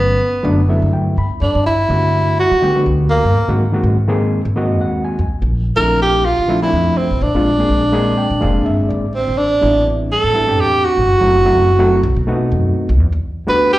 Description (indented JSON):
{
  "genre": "electric jazz fusion",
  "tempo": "124 BPM",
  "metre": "4/4",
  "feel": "swing 55% on 16ths",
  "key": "unclear",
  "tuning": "A4 = 439 Hz",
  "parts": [
    { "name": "clear tenor saxophone", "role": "melody", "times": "0.0-13.8 s", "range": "Bb3 to B4", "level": "-15 LUFS", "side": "right 1 dB", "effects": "plate reverb, slapback echo" },
    { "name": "overdriven reed electric piano", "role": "accompaniment", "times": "0.0-13.8 s", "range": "D3 to B5", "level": "-18 LUFS", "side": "left 1 dB", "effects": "spring reverb, plate reverb, slapback echo" },
    { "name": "upright bass", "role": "bass", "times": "0.0-13.8 s", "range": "F1 to G3", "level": "-17 LUFS", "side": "equal", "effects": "none" }
  ],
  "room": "moderate club reverb, RT60 0.5 s",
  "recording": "live gig heard through the venue's PA, club reverb, lossy compression artefacts",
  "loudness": "-13 LUFS",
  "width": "side -16 dB against mid",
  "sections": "0.0-1.4 A section; 1.4-13.8 B section",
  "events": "reed electric piano fill 0.4-1.4, 4.3-5.3, 7.7-9.1",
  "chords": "0.0 Gmaj13; 1.4 Gmaj9; 3.4 Ab9; 5.3 Bbmaj9#11; 7.2 Bb9; 9.1 Am11; 11.1 F#m7b5; 12.0 B7b9; 13.0 Em11"
}